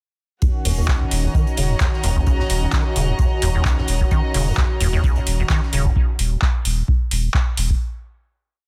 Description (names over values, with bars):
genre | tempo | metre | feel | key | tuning
acid house | 130 BPM | 4/4 | swing 55% on 16ths | Eb minor | A4 = 444 Hz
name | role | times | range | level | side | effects
warm analog pad | sustained chords | 0.4-5.9 s | Eb3 to Gb4 | -32 LUFS | equal | chorus, sidechain pumping
acid bass, square | riff | 0.4-5.9 s | Db2 to Eb3 | -26 LUFS | equal | ensemble chorus, tape echo
electronic kick drum | drums | 0.4-7.8 s | none | -21 LUFS | equal | none
swinging big-band drum kit | drums | 0.4-5.8 s | hi-hat, snare drum | -41 LUFS | equal | sidechain pumping on hats, high-pass filter on hats, high-pass filter on snare, high-pass filter on room
warm chamber string section | texture | 0.4-6.0 s | Gb4 to Bb5 | -32 LUFS | equal | sidechain pumping
saturated sub bass | bass | 0.7-7.7 s | Eb1 | -24 LUFS | equal | sidechain pumping
booming analog drum machine | drums | 0.7-7.7 s | handclaps, hi-hat | -28 LUFS | equal | none
room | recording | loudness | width
little or no reverb | dense, heavily limited modern master | -19 LUFS | mono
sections
0.4-7.8 groove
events
filter sweep on acid bass 0.4-6.0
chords
0.4 Ebm7